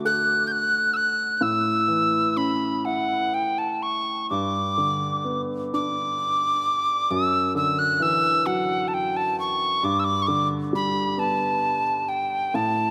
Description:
celtic folk, Celtic slow air; 41-46 BPM (dotted quarters); 6/8; rubato; A4 = 440 Hz
warm upright piano; accompaniment; 0.0-12.9 s; F#2 to A4; -30 LUFS; equal
tin whistle; melody; 0.1-12.9 s; F#5 to G6; -25 LUFS; equal
moderate church reverb, RT60 2.8 s; -23 LUFS; mono
0.0-12.9 A section
0.0 D; 1.4 A; 4.3 G; 7.1 Dadd9/F#; 9.8 G
0.05 | 1.41 2.84 | 4.29 5.73 | 7.11 8.47 | 9.84 11.17 | 12.52

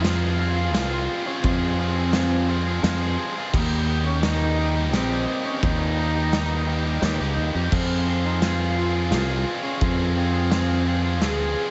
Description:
post-rock; 86 BPM; 3/4; straight; F minor; A4 = 440 Hz
muted cello; melody; 0.0-11.7 s; Bb3 to Ab4; -30 LUFS; equal; analog delay
tight distorted guitar; riff; 0.0-11.7 s; Eb3 to Ab4; -30 LUFS; equal; distortion
fingered electric bass; bass; 0.0-11.5 s; Bb1 to F2; -26 LUFS; equal
loose indie drum kit; drums; 0.0-11.4 s; crash cymbal, kick drum, ride cymbal, snare drum; -30 LUFS; equal
moderate lush hall reverb, RT60 2.1 s; dreamy mix soaked in reverb, nothing above 7.9 kHz; -23 LUFS; mono
0.0-11.7 A section
0.0 Fm; 3.5 Eb; 7.7 Fm
0.04 0.74 | 1.43 2.13 2.83 | 3.53 4.22 4.92 | 5.62 6.32 7.01 | 7.71 8.41 9.11 | 9.81 10.51 11.21

